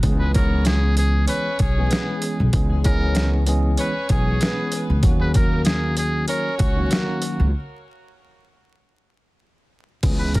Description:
hip hop, boom-bap hip-hop; 96 BPM; 4/4; swing 55% on 16ths; A4 = 440 Hz
tine electric piano; accompaniment; 0.0-10.4 s; D#3 to G#4; -26 LUFS; equal; medium stereo tremolo, cassette tape, high-pass filter, low-pass filter
upright bass; bass; 0.0-10.4 s; B1 to D#2; -20 LUFS; equal
boom bap sampler-style drum kit; drums; 0.0-10.4 s; crash cymbal, hi-hat, kick drum, snare drum; -21 LUFS; equal; overdrive
trumpet with metal mute; melody; 0.2-10.4 s; F#4 to B4; -28 LUFS; equal; high-pass filter, low-pass filter, digital delay
warm saxophone section; stabs; 0.2-7.2 s; G#3 to C#5; -31 LUFS; equal; high-pass filter, low-pass filter, digital delay
light reverb; dense, heavily limited modern master, vinyl crackle; -18 LUFS; side -21 dB against mid
0.0-10.0 A section
break 7.5-10.0
0.0 C#m7; 5.0 D#m7
| 0.03 0.66 1.28 1.91 | 2.53 3.16 3.78 4.41 | 5.03 5.66 6.28 6.91 | 7.53 8.16 8.78 9.41 | 10.03

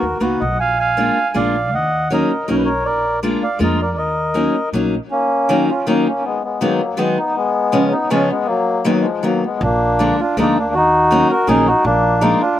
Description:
musette waltz; 160 BPM; 3/4; rubato; Eb minor; A4 = 440 Hz
mellow accordion; melody; 0.0-12.6 s; D#3 to Ab5; -17 LUFS; equal; slapback echo
fingerpicked steel-string acoustic guitar; accompaniment; 0.0-12.4 s; Db3 to F#4; -18 LUFS; left 1 dB; slapback echo
upright bass; bass; 0.0-5.0, 9.6-12.3 s; Bb1 to F2; -23 LUFS; right 1 dB
little or no reverb; recorded outdoors, with no room sound, faint mains hum; -14 LUFS; side -12 dB against mid
0.0-5.1 A section; 5.1-12.6 A section
0.0 Bmaj7; 0.6 Bb7; 1.7 Ebm7; 2.8 Bb7; 4.0 Ebm7; 6.2 Abm7; 7.3 Db7; 8.5 Bmaj7; 9.6 Bb7; 10.7 Ebm7; 11.8 Bb7
0.21 | 0.59 0.97 1.35 | 1.73 2.10 2.47 | 2.84 3.22 3.59 | 3.97 4.34 4.73 | 5.11 5.49 5.87 | 6.24 6.60 6.97 | 7.34 7.71 8.09 | 8.47 8.84 9.22 | 9.61 9.98 10.36 | 10.73 11.10 11.47 | 11.84 12.21 12.58

